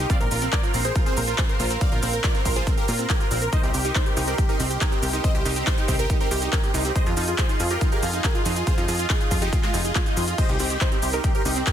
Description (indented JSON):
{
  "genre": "uplifting trance",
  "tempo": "140 BPM",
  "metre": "4/4",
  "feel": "straight",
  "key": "C minor",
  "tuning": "A4 = 440 Hz",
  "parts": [
    { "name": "supersaw chords", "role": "melody", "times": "0.0-11.7 s", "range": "Ab3 to F5", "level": "-28 LUFS", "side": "right 1 dB", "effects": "sidechain pumping, digital delay" },
    { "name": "dark grand piano", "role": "second line", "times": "0.0-11.7 s", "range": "F4 to F5", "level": "-35 LUFS", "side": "right 2 dB", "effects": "none" },
    { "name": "lush unison pad", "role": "sustained chords", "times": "0.0-11.7 s", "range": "Ab4 to C6", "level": "-32 LUFS", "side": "equal", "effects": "chorus, phaser, sidechain pumping" },
    { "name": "analog pluck", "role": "arpeggios", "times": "0.0-11.7 s", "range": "C4 to Bb4", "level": "-31 LUFS", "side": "right 5 dB", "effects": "chorus, vintage 12-bit sampler grit, sidechain pumping, digital delay" },
    { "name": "plucky analog bass", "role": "bass", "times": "0.0-11.6 s", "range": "F1 to Bb2", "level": "-27 LUFS", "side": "equal", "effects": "sidechain pumping" },
    { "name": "big-room dance drum kit", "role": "drums", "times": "0.1-11.7 s", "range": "crash cymbal, handclaps, hi-hat, shaker", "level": "-28 LUFS", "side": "left 1 dB", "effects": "sidechain pumping on hats, sidechain pumping on cymbals, sidechain pumping on perc" },
    { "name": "electronic kick drum", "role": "drums", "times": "0.1-11.7 s", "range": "none", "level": "-23 LUFS", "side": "equal", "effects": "none" }
  ],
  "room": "little or no reverb",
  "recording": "dense, heavily limited modern master",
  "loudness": "-20 LUFS",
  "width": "side -10 dB against mid",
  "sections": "0.0-11.7 A section",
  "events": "none",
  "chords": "0.1 Bbsus2; 3.5 Cm7; 7.0 Fm7; 10.4 Cm7"
}